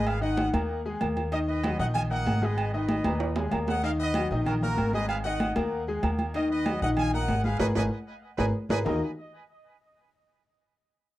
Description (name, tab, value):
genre	latin, salsa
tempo	191 BPM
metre	4/4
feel	straight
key	Eb minor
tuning	A4 = 441 Hz
part	bright trumpet section	melody	0.0-9.0 s	Gb4 to Ab5	-33 LUFS	right 1 dB	tape echo
part	bright baby grand piano	accompaniment	0.0-9.0 s	Bb2 to Bb5	-30 LUFS	left 2 dB	none
part	upright bass	bass	0.0-9.0 s	Ab1 to Eb2	-30 LUFS	equal	none
part	agogo bells and timbales	percussion	0.1-8.9 s	none	-34 LUFS	right 5 dB	none
part	congas	percussion	0.1-8.9 s	none	-32 LUFS	equal	none
room	moderate small room reverb, RT60 0.5 s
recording	none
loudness	-25 LUFS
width	side -15 dB against mid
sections	0.0-8.9 A section; 8.9-10.1 B section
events	drum fill 3.2-3.8, 7.6-8.9; band accent 7.6-8.9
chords	0.1 Absus2; 1.3 Ebm; 2.6 Abmadd9; 3.8 Ebm; 5.1 Absus2; 6.3 Ebmadd9; 7.6 Abmadd9; 8.9 Ebmadd9